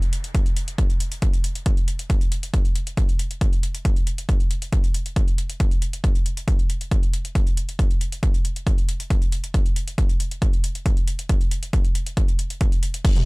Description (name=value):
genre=techno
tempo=137 BPM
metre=4/4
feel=straight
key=none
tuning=none
part: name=techno drum kit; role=drums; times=0.0-13.2 s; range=crash cymbal, hi-hat, ride cymbal, toms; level=-33 LUFS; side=left 1 dB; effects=sidechain pumping on hats, sidechain pumping on toms, sidechain pumping on cymbals
part: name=electronic kick drum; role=drums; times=0.3-13.1 s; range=none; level=-20 LUFS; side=equal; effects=none
room=little or no reverb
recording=none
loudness=-20 LUFS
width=side -28 dB against mid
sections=0.0-13.0 A section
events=none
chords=none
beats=0.35 | 0.78 1.22 1.66 2.10 | 2.54 2.97 3.41 3.85 | 4.29 4.73 5.16 5.60 | 6.04 6.48 6.92 7.35 | 7.79 8.23 8.67 9.11 | 9.54 9.98 10.42 10.86 | 11.29 11.73 12.17 12.61 | 13.05